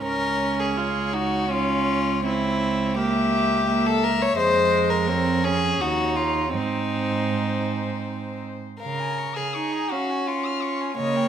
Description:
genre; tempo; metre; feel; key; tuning
classical, slow romantic movement for string quartet; 78-88 BPM; 3/4; rubato; Db major; A4 = 440 Hz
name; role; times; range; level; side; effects
warm violin; melody; 0.0-11.3 s; C5 to F6; -31 LUFS; left 10 dB; none
rich violin; second line; 0.0-11.3 s; Eb4 to Db5; -25 LUFS; left 3 dB; none
rich viola; accompaniment; 0.0-11.3 s; Ab3 to F4; -26 LUFS; right 4 dB; none
rich cello; bass; 0.0-11.3 s; Db2 to Db3; -28 LUFS; right 5 dB; none
room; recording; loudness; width
moderate recital hall reverb, RT60 1.6 s; minimal, uncompressed stereo recording; -21 LUFS; side -9 dB against mid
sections
0.0-11.3 A section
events
none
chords
0.0 Db; 2.2 Dbdim7; 4.4 Db/F; 5.8 Ebm7; 6.5 Ab; 8.8 Db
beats
| 0.03 0.77 1.51 | 2.24 2.98 3.69 | 4.38 5.08 5.81 | 6.54 7.29 8.05 | 8.81 9.54 10.26 | 10.96

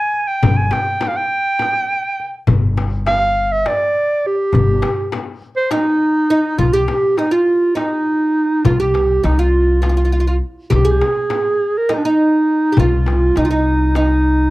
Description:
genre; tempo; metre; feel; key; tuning
Turkish makam ensemble; 204 BPM (eighths); 7/8; straight; G makam hicaz; A4 = 440 Hz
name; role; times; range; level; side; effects
breathy clarinet; melody; 0.0-14.5 s; D4 to Ab5; -16 LUFS; right 1 dB; slapback echo
darbuka; percussion; 0.1-14.3 s; none; -21 LUFS; left 2 dB; none
upright bass; bass; 0.4-14.5 s; G1 to C2; -17 LUFS; equal; none
frame drum; percussion; 0.4-14.1 s; none; -24 LUFS; left 4 dB; none
oud; second line; 5.7-14.5 s; Eb4 to Ab4; -20 LUFS; right 1 dB; none
room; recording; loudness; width
light reverb; dry, close 1970s-style studio recording; -14 LUFS; side -18 dB against mid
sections
0.0-6.6 A section; 6.6-14.5 B section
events
none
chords
none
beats
0.13 | 0.42 0.72 1.01 1.30 1.60 1.89 2.19 | 2.48 2.77 3.07 3.36 3.66 3.95 4.24 | 4.54 4.83 5.13 5.42 5.71 6.01 6.30 | 6.60 6.89 7.19 7.48 7.78 8.07 8.37 | 8.66 8.95 9.25 9.54 9.84 10.13 10.43 | 10.72 11.02 11.31 11.61 11.90 12.19 12.49 | 12.78 13.08 13.37 13.67 13.96 14.25

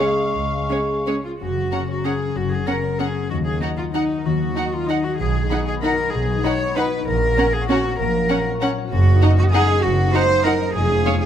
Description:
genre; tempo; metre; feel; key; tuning
classical; 162-210 BPM; 3/4; rubato; F# major; A4 = 440 Hz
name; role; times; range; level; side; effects
warm chamber violin section; melody; 0.0-11.1 s; E#5 to B5; -35 LUFS; left 2 dB; none
dark clarinet; second line; 0.0-1.2 s; G#4; -29 LUFS; equal; none
silver concert flute; second line; 0.0-1.2 s; C#6; -27 LUFS; left 1 dB; none
warm chamber violin section; second line; 0.0-11.1 s; G#4 to F#5; -28 LUFS; equal; none
mellow bassoon; accompaniment; 0.0-1.2 s; G#3; -26 LUFS; right 2 dB; none
rich studio viola section; accompaniment; 0.0-11.1 s; G#3 to D#4; -26 LUFS; right 2 dB; none
dark French horn section; sustained chords; 0.0-1.2 s; G#3 to C#4; -29 LUFS; left 2 dB; none
concert harp; arpeggios; 0.0-11.3 s; F2 to Eb6; -25 LUFS; left 8 dB; none
warm chamber cello section; bass; 0.3-11.3 s; C#2 to C#5; -22 LUFS; right 1 dB; none
warm chamber double bass section; bass; 0.3-11.0 s; F1 to D#2; -22 LUFS; right 2 dB; none
room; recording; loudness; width
moderate recital hall reverb, RT60 1.4 s; none; -17 LUFS; side -9 dB against mid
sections
0.0-1.4 A section; 1.4-11.3 B section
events
none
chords
0.0 C#; 1.4 F#; 3.3 D#m; 5.2 B6; 7.1 F#/A#; 8.9 Ebm/Gb; 10.8 Db/F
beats
0.00 | 0.35 0.70 1.07 | 1.40 1.72 2.05 | 2.36 2.67 3.00 | 3.30 3.62 3.94 | 4.25 4.56 4.89 | 5.20 5.51 5.83 | 6.14 6.45 6.76 | 7.07 7.38 7.70 | 7.99 8.30 8.62 | 8.92 9.22 9.54 | 9.84 10.14 10.46 | 10.75 11.05

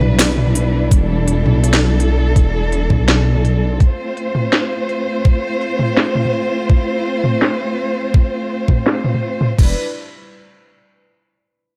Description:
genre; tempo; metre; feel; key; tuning
half-time drum and bass; 166 BPM; 4/4; swing 54% on 16ths, half-time; E phrygian; A4 = 440 Hz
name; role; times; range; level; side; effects
dark studio cello section; sustained chords; 0.0-9.8 s; G3 to C5; -22 LUFS; equal; sidechain pumping
dark detuned saw bass; bass; 0.0-3.8, 9.6-9.8 s; E1 to B1; -18 LUFS; equal; tube saturation
drum and bass drum kit; drums; 0.0-9.7 s; crash cymbal, hi-hat, snare drum, toms; -20 LUFS; equal; low-pass filter on hats, low-pass filter on toms, low-pass filter on snare, low-pass filter on cymbals
electronic kick drum; drums; 0.9-9.7 s; none; -14 LUFS; equal; none
room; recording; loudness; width
light reverb, digital ambience; none; -16 LUFS; mono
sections
0.0-9.6 A section; 9.6-11.0 B section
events
filter sweep on drum 0.0-9.6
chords
0.0 Em7; 3.8 F; 9.6 Em7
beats
0.19 0.55 | 0.91 1.27 1.64 2.00 | 2.36 2.72 3.08 3.44 | 3.81 4.17 4.53 4.89 | 5.25 5.61 5.97 6.34 | 6.70 7.06 7.42 7.78 | 8.14 8.50 8.87 9.23 | 9.59

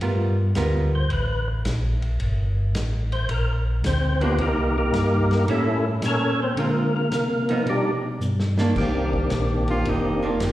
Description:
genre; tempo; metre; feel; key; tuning
soul jazz organ trio; 110 BPM; 4/4; swing 68% on 8ths; C dorian; A4 = 440 Hz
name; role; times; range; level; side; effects
archtop guitar, miked and amplified; accompaniment; 0.0-0.9, 4.2-10.5 s; D3 to A#4; -27 LUFS; right 3 dB; plate reverb, slapback echo
mellow tonewheel organ; bass; 0.0-10.5 s; F1 to D3; -23 LUFS; equal; chorus vibrato, slow rotary speaker
vintage drum kit; drums; 0.0-10.5 s; crash cymbal, hi-hat, kick drum, ride cymbal, snare drum; -33 LUFS; equal; none
percussive tonewheel organ; melody; 1.0-10.3 s; Eb3 to C#5; -23 LUFS; equal; slow rotary speaker, overdrive, chorus vibrato, plate reverb, slapback echo
breathy alto saxophone; melody; 9.7-10.5 s; Eb4 to G4; -29 LUFS; right 1 dB; slapback echo
room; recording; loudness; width
light reverb; live gig heard through the venue's PA, recital hall reverb; -20 LUFS; side -14 dB against mid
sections
0.0-8.8 A section; 8.8-10.5 A section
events
tonewheel organ solo 0.0-8.8; drum fill 8.2-8.8; alto saxophone solo 8.8-10.5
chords
0.0 G7#9; 4.4 Cm9; 5.5 A7b9; 6.6 Dm7b5; 7.7 G; 8.8 Cm9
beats
| 0.02 0.57 1.11 1.66 | 2.21 2.75 3.30 3.85 | 4.39 4.94 5.48 6.03 | 6.58 7.12 7.67 8.22 | 8.76 9.31 9.86 10.41

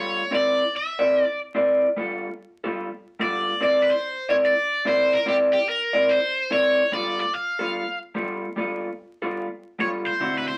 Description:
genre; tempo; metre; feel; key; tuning
blues; 146 BPM; 4/4; swing 64% on 8ths; unclear; A4 = 440 Hz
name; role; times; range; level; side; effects
cranked stack guitar; melody; 0.0-10.6 s; G4 to F5; -27 LUFS; equal; overdrive, phaser
electric guitar through a small old amp; riff; 0.0-10.5 s; D3 to D5; -24 LUFS; equal; none
room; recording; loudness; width
wet studio reverb, RT60 0.6 s; vinyl crackle; -23 LUFS; mono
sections
0.0-10.6 A section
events
none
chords
0.3 C9; 2.0 G9; 3.6 C9; 6.9 G9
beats
| 0.32 0.74 1.15 1.56 | 1.97 2.39 2.80 3.21 | 3.62 4.04 4.45 4.86 | 5.27 5.68 6.09 6.51 | 6.92 7.33 7.74 8.15 | 8.56 8.98 9.39 9.80 | 10.21

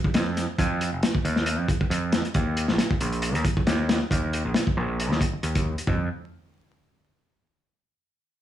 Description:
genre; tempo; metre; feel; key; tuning
breakbeat, breaks; 136 BPM; 4/4; swing 55% on 16ths; unclear; A4 = 442 Hz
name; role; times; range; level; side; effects
overdriven picked electric bass; bass; 0.0-6.1 s; F1 to F2; -26 LUFS; equal; low-pass filter
crunchy breakbeat drum kit; drums; 0.0-6.0 s; hi-hat, kick drum, snare drum, toms; -24 LUFS; equal; none
room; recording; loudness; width
little or no reverb; dry, gritty hardware recording, transformer saturation, vinyl crackle, studio reverb; -22 LUFS; side -11 dB against mid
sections
0.0-5.9 A section; 5.9-7.6 B section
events
none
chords
none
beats
0.14 | 0.58 1.02 1.47 1.91 | 2.35 2.79 3.23 3.67 | 4.11 4.55 5.00 5.44 | 5.88

